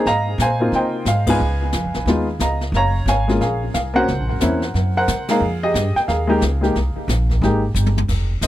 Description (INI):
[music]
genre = jazz piano trio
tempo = 179 BPM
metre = 4/4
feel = swing 62% on 8ths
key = F minor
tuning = A4 = 439 Hz
[part]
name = warm baby grand piano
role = melody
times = 0.0-8.5 s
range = Ab3 to Bb5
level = -19 LUFS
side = equal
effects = tape echo
[part]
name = upright bass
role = bass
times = 0.1-8.5 s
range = F1 to C3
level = -20 LUFS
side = equal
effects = none
[part]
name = jazz brush drum kit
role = drums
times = 0.1-8.5 s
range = brushed snare drum, crash cymbal, hi-hat, kick drum, ride cymbal, snare drum, toms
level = -26 LUFS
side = left 2 dB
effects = none
[sound]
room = little or no reverb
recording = dry, close 1970s-style studio recording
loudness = -16 LUFS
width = side -14 dB against mid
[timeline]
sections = 0.0-8.1 A section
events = band accent 1.2, 5.2; drum fill 7.7-8.1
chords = 0.1 Ab6; 1.4 Db9; 2.7 Gbmaj9; 4.1 Gb7#11; 5.4 Fm11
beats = | 0.05 0.39 0.72 1.06 | 1.39 1.73 2.06 2.40 | 2.73 3.07 3.40 3.74 | 4.07 4.41 4.74 5.08 | 5.41 5.74 6.08 6.41 | 6.75 7.08 7.42 7.75 | 8.08 8.42